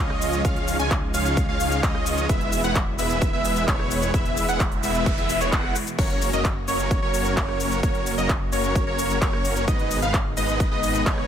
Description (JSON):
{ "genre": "EDM, festival progressive house", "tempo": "130 BPM", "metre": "4/4", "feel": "straight", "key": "F# major", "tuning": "A4 = 441 Hz", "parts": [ { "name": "lush unison pad", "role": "sustained chords", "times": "0.0-11.3 s", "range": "B2 to F#4", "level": "-31 LUFS", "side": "equal", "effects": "chorus, sidechain pumping" }, { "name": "wide unison lead", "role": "arpeggios", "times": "0.0-11.3 s", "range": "C#5 to G#5", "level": "-27 LUFS", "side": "equal", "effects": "wide subtle chorus, sidechain pumping, digital delay" }, { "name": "big supersaw lead", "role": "riff", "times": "0.0-11.3 s", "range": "F#3 to G#5", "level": "-27 LUFS", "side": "right 1 dB", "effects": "vintage 12-bit sampler grit, sidechain pumping, digital delay" }, { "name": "wide detuned saw bass", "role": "bass", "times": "0.0-11.3 s", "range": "E1 to C#2", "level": "-29 LUFS", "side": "equal", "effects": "chorus, tube saturation, sidechain pumping" }, { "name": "big-room dance drum kit", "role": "drums", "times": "0.1-11.3 s", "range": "crash cymbal, handclaps, hi-hat, rim click, shaker", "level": "-29 LUFS", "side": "left 1 dB", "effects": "overdrive" }, { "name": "electronic kick drum", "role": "drums", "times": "0.4-11.2 s", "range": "none", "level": "-24 LUFS", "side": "equal", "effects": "overdrive" }, { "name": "noise sweep", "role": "sound effects", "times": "4.4-6.0 s", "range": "none", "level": "-34 LUFS", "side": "right 2 dB", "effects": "none" } ], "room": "light reverb", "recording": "none", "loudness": "-20 LUFS", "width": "side -9 dB against mid", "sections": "0.0-11.3 A section", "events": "noise sweep 4.4-6.0", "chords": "0.0 C#; 2.3 E; 6.0 F#; 9.7 G#m", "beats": "| 0.45 0.91 1.37 1.83 | 2.29 2.75 3.22 3.68 | 4.14 4.60 5.06 5.52 | 5.99 6.45 6.91 7.37 | 7.83 8.29 8.76 9.22 | 9.68 10.14 10.60 11.06" }